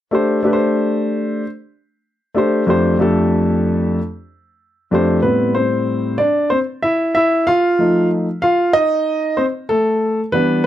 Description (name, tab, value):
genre	hip hop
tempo	94 BPM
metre	4/4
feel	swing 66% on 16ths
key	A minor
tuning	A4 = 440 Hz
part	dark grand piano	solo	0.1-10.7 s	F2 to F5	-14 LUFS	equal	none
room	moderate studio reverb, RT60 0.6 s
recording	none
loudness	-14 LUFS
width	side -12 dB against mid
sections	0.1-5.2 A section; 5.2-10.7 B section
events	grand piano solo 5.2-10.7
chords	0.1 Am7; 2.7 Fadd9; 5.2 Am9; 7.8 F7